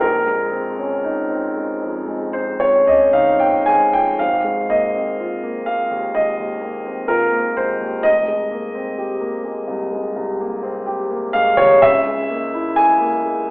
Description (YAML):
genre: classical, impressionist solo piano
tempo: 56-64 BPM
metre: 4/4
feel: rubato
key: Ab major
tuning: A4 = 440 Hz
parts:
  - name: warm concert grand piano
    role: solo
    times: 0.0-13.5 s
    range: F1 to Ab5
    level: -16 LUFS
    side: equal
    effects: none
room: wet recital hall reverb, RT60 1.5 s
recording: heard from further back in the room, telephone sound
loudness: -16 LUFS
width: side -25 dB against mid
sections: 0.0-13.5 A section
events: none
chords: 0.0 Bbm11; 4.2 Ab69; 8.0 Fm11; 11.8 Dbm6